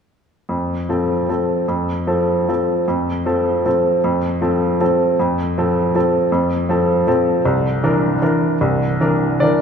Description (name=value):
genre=classical, piano waltz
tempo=131-167 BPM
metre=3/4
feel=rubato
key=F major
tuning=A4 = 440 Hz
part: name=clear upright piano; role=solo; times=0.5-9.6 s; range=C2 to D5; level=-15 LUFS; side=equal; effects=none
room=wet church reverb, RT60 3.4 s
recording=recorded in a church or concert hall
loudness=-15 LUFS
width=side -6 dB against mid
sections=0.5-9.6 A section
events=none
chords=0.5 F; 7.4 C9